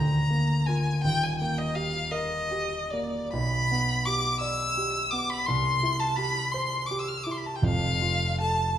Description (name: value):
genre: classical, romantic duo for violin and grand piano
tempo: 47-57 BPM (dotted quarters)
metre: 6/8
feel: rubato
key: C major from 3.3 s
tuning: A4 = 441 Hz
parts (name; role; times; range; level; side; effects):
- rich violin; melody; 0.0-8.8 s; D5 to F6; -27 LUFS; left 1 dB; none
- warm concert grand piano; accompaniment; 0.0-8.8 s; Eb1 to D5; -27 LUFS; right 1 dB; none
room: wet recital hall reverb, RT60 1.5 s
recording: none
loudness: -24 LUFS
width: side -10 dB against mid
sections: 0.0-8.8 A section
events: none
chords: 0.0 Bb/D; 1.0 Eb; 3.3 G/B; 5.5 C; 7.6 Dm/F (rootless)